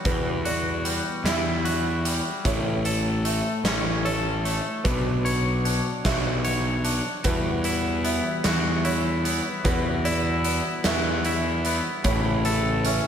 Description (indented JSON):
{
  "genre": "post-rock",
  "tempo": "50 BPM (dotted quarters)",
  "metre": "6/8",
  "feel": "straight",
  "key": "E dorian",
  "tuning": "A4 = 441 Hz",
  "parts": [
    { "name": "pedal steel guitar", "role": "sustained chords", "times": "0.0-13.1 s", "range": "C#3 to F#4", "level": "-33 LUFS", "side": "equal", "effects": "none" },
    { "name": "felt-muted upright piano", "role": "arpeggios", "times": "0.0-13.1 s", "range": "B4 to E5", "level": "-33 LUFS", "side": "right 4 dB", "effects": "digital delay, slapback echo" },
    { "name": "twangy electric guitar", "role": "arpeggios", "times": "0.0-13.1 s", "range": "E2 to C#5", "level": "-28 LUFS", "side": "left 2 dB", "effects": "digital delay, slapback echo" },
    { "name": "fuzz picked electric bass", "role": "bass", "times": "0.0-13.0 s", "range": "A1 to E2", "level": "-26 LUFS", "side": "equal", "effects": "overdrive" },
    { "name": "big rock drum kit", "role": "drums", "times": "0.1-13.0 s", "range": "hi-hat, kick drum, snare drum", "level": "-27 LUFS", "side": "equal", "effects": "none" }
  ],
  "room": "moderate lush hall reverb, RT60 2.5 s",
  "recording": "big arena sound",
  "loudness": "-22 LUFS",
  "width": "side -8 dB against mid",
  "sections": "0.0-13.1 A section",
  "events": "none",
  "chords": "0.0 Emadd9; 2.5 A; 4.9 Bmadd9; 7.3 Emadd9; 12.0 A",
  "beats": "| 0.06 1.26 | 2.46 3.66 | 4.86 6.06 | 7.26 8.46 | 9.65 10.85 | 12.05"
}